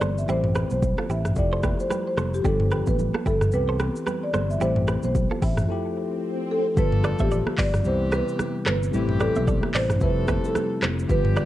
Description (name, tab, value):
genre	afrobeats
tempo	111 BPM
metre	4/4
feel	swing 58% on 16ths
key	unclear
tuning	A4 = 440 Hz
part	bell-like tine electric piano	accompaniment	0.0-11.5 s	C3 to G4	-29 LUFS	left 3 dB	phaser
part	direct-recorded clean electric guitar	riff	0.0-11.5 s	D4 to E5	-34 LUFS	right 4 dB	tape echo
part	fingered electric bass	bass	0.0-11.4 s	F1 to C2	-26 LUFS	equal	none
part	afro-pop drum kit	drums	0.0-11.5 s	handclaps, hi-hat, kick drum, rim click, shaker, toms	-26 LUFS	equal	overdrive, vintage 12-bit sampler grit
part	congas	percussion	0.0-11.2 s	none	-34 LUFS	right 5 dB	none
part	marimba with medium mallets	melody	0.2-11.2 s	G4 to E5	-28 LUFS	equal	tape echo
part	swell	sound effects	5.9-6.8 s	none	-35 LUFS	left 2 dB	none
part	warm horn section	second line	6.8-11.5 s	D3 to A4	-35 LUFS	left 3 dB	none
room	light reverb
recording	dark, warm production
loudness	-21 LUFS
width	side -14 dB against mid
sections	0.0-6.8 A section; 6.8-11.5 B section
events	break 5.7-6.8; swell 5.9-6.8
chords	0.3 Am7; 1.4 Fmaj9; 2.4 G7; 3.5 Cmaj7; 4.6 Am7; 5.7 Fmaj9; 6.8 G7; 7.9 Cmaj7; 8.9 Am7; 10.0 Fmaj9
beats	| 0.28 0.82 1.36 1.91 | 2.44 2.99 3.53 4.07 | 4.61 5.15 5.69 6.23 | 6.77 7.31 7.85 8.39 | 8.93 9.47 10.01 10.55 | 11.09